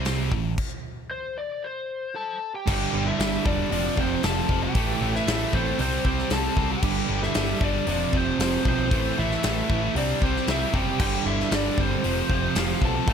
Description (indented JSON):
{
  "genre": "hard rock",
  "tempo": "115 BPM",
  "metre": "4/4",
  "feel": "straight",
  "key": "unclear",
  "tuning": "A4 = 440 Hz",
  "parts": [
    { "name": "cranked stack guitar", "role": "riff", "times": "0.0-13.1 s", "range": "F2 to C4", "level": "-29 LUFS", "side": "right 13 dB", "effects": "overdrive" },
    { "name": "heavy high-gain guitar", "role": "riff", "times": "0.0-13.1 s", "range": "F2 to C4", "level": "-31 LUFS", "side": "left 17 dB", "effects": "distortion" },
    { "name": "growling picked electric bass", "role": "bass", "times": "0.0-13.1 s", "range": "E1 to C2", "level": "-29 LUFS", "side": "equal", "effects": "overdrive" },
    { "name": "big rock drum kit", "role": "drums", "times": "0.0-13.1 s", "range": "crash cymbal, hi-hat, kick drum, snare drum", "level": "-27 LUFS", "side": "left 1 dB", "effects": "none" },
    { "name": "lead guitar through a small cranked amp", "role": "melody", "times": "1.1-13.1 s", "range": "C5 to A5", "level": "-30 LUFS", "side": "left 3 dB", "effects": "overdrive" },
    { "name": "dark smooth lead guitar", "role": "second line", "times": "2.2-13.1 s", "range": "C4 to A4", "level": "-35 LUFS", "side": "right 6 dB", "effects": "overdrive" },
    { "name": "tonewheel organ", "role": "sustained chords", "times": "2.7-13.1 s", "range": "F3 to D5", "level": "-40 LUFS", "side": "left 1 dB", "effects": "none" },
    { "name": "sludgy distorted guitar", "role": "riff", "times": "2.7-13.1 s", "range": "F2 to C4", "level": "-32 LUFS", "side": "left 1 dB", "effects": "overdrive" }
  ],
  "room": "little or no reverb",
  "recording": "none",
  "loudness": "-22 LUFS",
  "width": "side -7 dB against mid",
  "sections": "0.0-2.7 A section; 2.7-13.1 B section",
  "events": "stop 0.6-2.7",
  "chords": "0.3 A5; 1.6 N.C.; 2.7 G5; 3.7 F5; 4.8 A5; 5.8 C5; 6.8 G5; 7.9 F5; 8.9 A5; 10.0 C5; 11.0 G5; 12.0 F5"
}